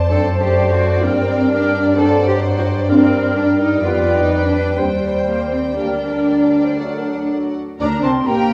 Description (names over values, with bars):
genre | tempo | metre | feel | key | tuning
classical | 117-131 BPM | 4/4 | rubato | G minor | A4 = 440 Hz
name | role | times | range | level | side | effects
rich symphonic violin section | melody | 0.0-8.5 s | Bb4 to A5 | -34 LUFS | equal | none
mellow clarinet | second line | 0.0-7.6 s | G4 to D5 | -28 LUFS | equal | none
warm symphonic violin section | second line | 0.0-8.5 s | C5 to Bb5 | -29 LUFS | equal | none
rich symphonic viola section | accompaniment | 0.0-8.5 s | Bb3 to C5 | -30 LUFS | equal | none
rich studio double bass section | bass | 0.0-8.5 s | Bb1 to G2 | -24 LUFS | equal | none
bright silver concert flute | second line | 0.1-8.5 s | F#4 to D6 | -27 LUFS | equal | none
mellow bassoon | accompaniment | 0.1-7.5 s | F#3 to A3 | -26 LUFS | equal | none
warm French horn section | sustained chords | 0.1-8.5 s | A3 to G4 | -23 LUFS | equal | none
rich symphonic cello section | bass | 0.1-8.5 s | G3 to Bb4 | -21 LUFS | equal | none
room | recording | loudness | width
wet scoring stage reverb, RT60 1.6 s | worn, warbling old tape, cassette tape, warbly pitch drift, small room ambience | -16 LUFS | mono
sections
0.0-7.8 A section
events
none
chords
0.1 D7/F#; 1.0 Gm; 2.0 D7/G; 2.9 Gm; 3.8 G7/F; 4.8 Cm/Eb; 5.8 Gm/D; 6.8 D; 7.8 Gm